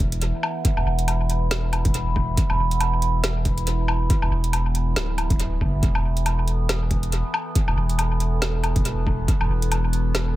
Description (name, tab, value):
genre	deep dubstep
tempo	139 BPM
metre	4/4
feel	swing 57% on 16ths, half-time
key	unclear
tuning	A4 = 439 Hz
part	overtone-sweeping drone	sustained chords	0.0-10.4 s	E3 to A4	-28 LUFS	right 2 dB	chorus, built-in reverb, phaser
part	saturated sub bass	bass	0.0-10.4 s	D1 to G1	-22 LUFS	equal	none
part	electronic kick drum	drums	0.0-9.4 s	none	-22 LUFS	equal	overdrive
part	garage drum kit	drums	0.0-10.2 s	hi-hat, snare drum, woodblock	-28 LUFS	left 1 dB	dub echo
room	little or no reverb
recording	echo-heavy mix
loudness	-20 LUFS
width	side -16 dB against mid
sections	0.0-10.4 A section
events	none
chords	0.0 E5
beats	0.22 | 0.65 1.08 1.51 1.94 | 2.38 2.81 3.24 3.67 | 4.10 4.53 4.96 5.40 | 5.83 6.26 6.69 7.12 | 7.55 7.99 8.42 8.85 | 9.28 9.71 10.14